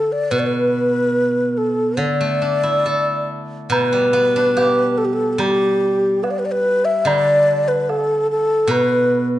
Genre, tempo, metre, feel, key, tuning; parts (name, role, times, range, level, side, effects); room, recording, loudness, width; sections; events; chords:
chinese traditional, Chinese chamber ensemble; 72 BPM; 4/4; rubato; D zhi mode; A4 = 438 Hz
breathy mellow xiao; melody; 0.0-9.3 s; G4 to E5; -17 LUFS; left 1 dB
steel-string zither; accompaniment; 0.0-9.4 s; B2 to A4; -20 LUFS; right 1 dB
woodblock; percussion; 3.7-8.9 s; -27 LUFS; right 4 dB
moderate recital hall reverb, RT60 1.6 s; dark, warm production, nothing above 10.9 kHz; -15 LUFS; side -14 dB against mid
0.0-3.7 A section; 3.7-9.4 B section